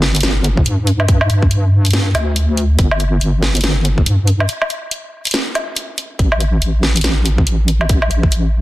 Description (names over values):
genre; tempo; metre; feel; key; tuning
deep dubstep; 141 BPM; 4/4; swing 60% on 16ths, half-time; unclear; A4 = 440 Hz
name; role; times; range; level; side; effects
deep soft wobble bass; bass; 0.0-8.6 s; G1 to G2; -14 LUFS; equal; chorus
garage drum kit; drums; 0.0-8.4 s; hi-hat, snare drum, woodblock; -19 LUFS; equal; studio reverb
electronic kick drum; drums; 0.6-8.3 s; none; -14 LUFS; equal; studio reverb
room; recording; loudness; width
light reverb; dense, heavily limited modern master; -13 LUFS; side -17 dB against mid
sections
0.0-8.6 A section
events
break 4.5-6.2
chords
none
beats
0.23 0.66 | 1.09 1.51 1.94 2.36 | 2.79 3.21 3.64 4.07 | 4.49 4.92 5.34 5.77 | 6.19 6.62 7.04 7.47 | 7.89 8.32